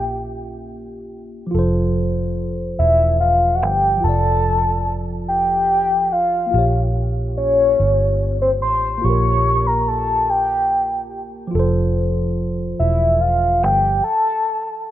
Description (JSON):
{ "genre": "R&B", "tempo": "48 BPM (dotted quarters)", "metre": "6/8", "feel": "straight", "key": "F major", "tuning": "A4 = 440 Hz", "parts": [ { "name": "soft octave-layered synth lead", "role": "melody", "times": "0.0-14.9 s", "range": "C5 to Db6", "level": "-17 LUFS", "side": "left 1 dB", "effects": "chorus" }, { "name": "tine electric piano", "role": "accompaniment", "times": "0.0-14.1 s", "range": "F3 to E5", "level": "-25 LUFS", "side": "right 1 dB", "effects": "phaser" }, { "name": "vintage muted fingered electric bass", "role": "bass", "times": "0.0-14.0 s", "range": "E1 to Bb1", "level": "-20 LUFS", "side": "equal", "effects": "none" } ], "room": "light reverb", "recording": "rough home demo mix, nothing above 8.0 kHz", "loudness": "-16 LUFS", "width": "side -12 dB against mid", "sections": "0.0-14.9 A section", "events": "stop 14.0-14.9", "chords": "0.0 Bbm6; 1.5 Fmaj7; 6.5 Bbm6; 11.5 Fmaj7" }